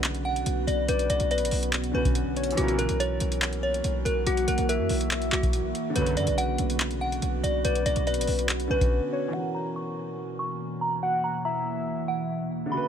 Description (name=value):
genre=hip hop, trap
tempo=142 BPM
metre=4/4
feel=half-time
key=unclear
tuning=A4 = 440 Hz
part: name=delicate synth tine bell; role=melody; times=0.0-12.9 s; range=F#4 to C#6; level=-30 LUFS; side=equal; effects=chorus, tremolo, low-pass filter, ping-pong delay
part: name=clear concert grand piano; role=accompaniment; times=0.0-12.9 s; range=C#3 to B4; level=-34 LUFS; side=right 1 dB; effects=low-pass filter
part: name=deep dark ambient pad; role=sustained chords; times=0.0-12.9 s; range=B2 to F#4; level=-33 LUFS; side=right 2 dB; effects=chorus, built-in reverb, low-pass filter
part: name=hard-hitting 808-style bass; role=bass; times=0.0-8.9 s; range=A#1 to F#2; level=-29 LUFS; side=equal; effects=none
part: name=booming analog drum machine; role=drums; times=0.0-9.0 s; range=handclaps, hi-hat, kick drum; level=-29 LUFS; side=equal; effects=none
part: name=soft octave-layered synth lead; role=second line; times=0.9-12.7 s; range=B4 to F#5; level=-34 LUFS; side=left 5 dB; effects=chorus, ping-pong delay
part: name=analog synth brass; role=stabs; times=2.6-2.9, 6.0-6.3 s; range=F#2 to F#3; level=-35 LUFS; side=right 2 dB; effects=chorus
room=little or no reverb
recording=none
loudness=-24 LUFS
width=side -8 dB against mid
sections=0.0-9.3 A section; 9.3-12.9 B section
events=break 8.9-9.3; filter sweep 9.3-12.9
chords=0.0 Bmadd9; 2.6 F#7/B; 6.0 Bmadd9; 9.3 F#7/B